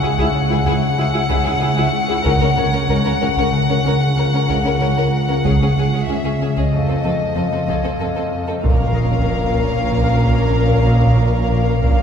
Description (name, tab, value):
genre	cinematic, suspense film score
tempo	94 BPM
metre	5/4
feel	straight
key	Bb minor from 8.6 s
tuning	A4 = 441 Hz
part	dark chamber violin section	melody	0.0-12.0 s	Eb5 to F#5	-23 LUFS	left 3 dB	none
part	warm chamber violin section	second line	0.0-12.0 s	G#4 to A#4	-24 LUFS	left 3 dB	none
part	dark chamber viola section	accompaniment	0.0-12.0 s	C4 to E4	-27 LUFS	right 2 dB	none
part	concert harp	riff	0.0-12.0 s	F2 to C#4	-20 LUFS	left 1 dB	none
part	dark chamber cello section	bass	0.0-12.0 s	C#2 to Bb2	-25 LUFS	right 2 dB	none
part	rich symphonic double bass section	bass	0.0-12.0 s	F1 to C#2	-24 LUFS	right 2 dB	none
part	organ-like drone	drone	0.0-12.0 s	Bb1 to F2	-24 LUFS	right 1 dB	ensemble chorus, built-in reverb
part	taiko ensemble	drums	0.2-12.0 s	none	-24 LUFS	right 1 dB	none
part	Celtic harp	texture	1.3-12.0 s	C#4 to E5	-36 LUFS	left 3 dB	none
part	impact	sound effects	8.6-11.8 s	none	-26 LUFS	equal	none
room	wet scoring stage reverb, RT60 2.0 s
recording	heard from further back in the room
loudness	-15 LUFS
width	side -7 dB against mid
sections	0.0-8.6 A section; 8.6-12.0 B section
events	impact 8.6-11.8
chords	0.0 Eadd9/C#; 2.3 F#/C#; 6.7 F7; 8.6 Bbm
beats	0.34 0.98 1.62 | 2.25 2.89 3.53 4.17 4.81 | 5.45 6.08 6.72 7.36 8.00 | 8.64 9.28 9.91 10.55 11.19 | 11.83